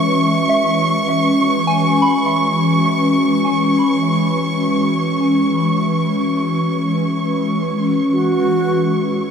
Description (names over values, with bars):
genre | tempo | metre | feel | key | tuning
ambient | 51 BPM | 4/4 | straight | C# minor | A4 = 440 Hz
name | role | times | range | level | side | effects
ethereal airy pad | sustained chords | 0.0-9.3 s | E3 to B4 | -16 LUFS | left 1 dB | ensemble chorus, built-in reverb
soft synth bell | arpeggios | 0.0-9.3 s | E5 to C#6 | -23 LUFS | right 1 dB | chorus, tape echo
rich studio violin section | texture | 0.0-9.3 s | C#6 | -21 LUFS | right 2 dB | none
bright reedy wooden-headed alto flute | melody | 8.1-9.3 s | F#4 | -18 LUFS | right 2 dB | none
room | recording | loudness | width
wet spring reverb, RT60 2.3 s | echo-heavy mix, faint mains hum | -14 LUFS | side -7 dB against mid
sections
0.0-9.3 A section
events
none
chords
0.0 C#m7